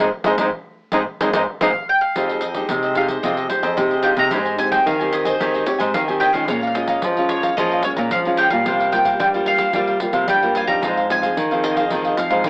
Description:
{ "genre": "samba and choro", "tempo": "111 BPM", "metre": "4/4", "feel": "straight", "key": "F minor", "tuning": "A4 = 441 Hz", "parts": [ { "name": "growling trombone", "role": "second line", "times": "0.0-1.7 s", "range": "Eb4", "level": "-24 LUFS", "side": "equal", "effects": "none" }, { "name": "cavaquinho", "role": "accompaniment", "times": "0.0-12.5 s", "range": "F4 to Bb5", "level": "-26 LUFS", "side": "equal", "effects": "none" }, { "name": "nylon-string guitar", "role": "accompaniment", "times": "0.0-12.5 s", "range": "G2 to G4", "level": "-27 LUFS", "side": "equal", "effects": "none" }, { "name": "nylon-string guitar", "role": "bass", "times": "0.0-12.5 s", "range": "F2 to G3", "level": "-25 LUFS", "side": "equal", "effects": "transformer saturation" }, { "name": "pandeiro", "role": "percussion", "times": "0.2-12.5 s", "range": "none", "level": "-31 LUFS", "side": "equal", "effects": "none" }, { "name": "mandolin", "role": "melody", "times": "1.6-12.5 s", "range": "C5 to Bb5", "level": "-23 LUFS", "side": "equal", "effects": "none" } ], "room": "light reverb", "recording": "dry, gritty hardware recording, transformer saturation, cassette tape, AM radio sound", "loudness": "-19 LUFS", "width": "mono", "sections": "0.0-2.2 A section; 2.2-12.5 B section", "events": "band accent 0.0-2.2", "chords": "0.0 Ab; 2.2 Fm9; 4.3 Abmaj7; 6.5 Bbm7; 8.7 C7sus4; 10.8 Ab6" }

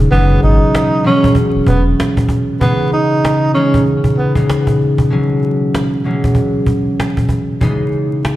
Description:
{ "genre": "hip hop, boom-bap hip-hop", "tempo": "96 BPM", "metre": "4/4", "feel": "swing 59% on 16ths", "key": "C# minor", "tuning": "A4 = 440 Hz", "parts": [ { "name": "concert harp", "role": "accompaniment", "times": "0.0-8.4 s", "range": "B2 to D#4", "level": "-14 LUFS", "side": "left 1 dB", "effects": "cassette tape" }, { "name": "sub bass with octave", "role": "bass", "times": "0.0-1.9 s", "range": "E1 to G#1", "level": "-12 LUFS", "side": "equal", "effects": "none" }, { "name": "breathy tenor saxophone", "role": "melody", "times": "0.1-4.3 s", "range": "B3 to D#4", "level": "-16 LUFS", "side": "right 2 dB", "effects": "ping-pong delay" }, { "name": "cajon", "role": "drums", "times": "0.1-8.4 s", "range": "none", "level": "-17 LUFS", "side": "equal", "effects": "none" } ], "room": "light reverb", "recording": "played on a big sound system in a bare room, large studio reverb, vinyl crackle", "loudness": "-11 LUFS", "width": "side -15 dB against mid", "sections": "0.0-2.6 A section; 2.6-8.4 B section", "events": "break 5.1-8.4", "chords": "0.1 F#9sus4; 2.6 C#m9; 5.1 F#9sus4; 7.6 C#m9" }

